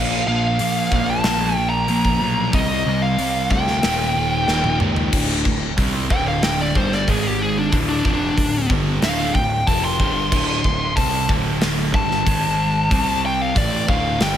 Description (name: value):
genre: hard rock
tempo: 93 BPM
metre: 4/4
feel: straight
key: D phrygian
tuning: A4 = 441 Hz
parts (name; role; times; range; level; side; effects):
- high-gain lead guitar; melody; 0.0-14.4 s; D4 to C6; -22 LUFS; left 1 dB; distortion, slapback echo
- overdriven semi-hollow guitar; riff; 0.0-14.4 s; D2 to C4; -24 LUFS; right 1 dB; phaser
- sludgy distorted guitar; riff; 0.0-14.4 s; D2 to C4; -26 LUFS; right 1 dB; overdrive, slapback echo
- fuzz picked electric bass; bass; 0.0-14.4 s; D1 to D2; -25 LUFS; equal; overdrive
- gated 80s drum kit; drums; 0.6-14.4 s; crash cymbal, hi-hat, kick drum, snare drum, toms; -22 LUFS; equal; none
room: moderate lush hall reverb, RT60 2.5 s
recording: big arena sound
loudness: -17 LUFS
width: side -10 dB against mid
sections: 0.0-5.1 A section; 5.1-14.4 B section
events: drum fill 4.5-5.1; lead electric guitar solo 5.1-14.4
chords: 0.0 Bb5; 2.5 C5; 3.8 Eb; 5.1 D5; 7.1 G#5; 7.7 Dm; 12.3 G#5; 12.9 C5; 13.6 Dm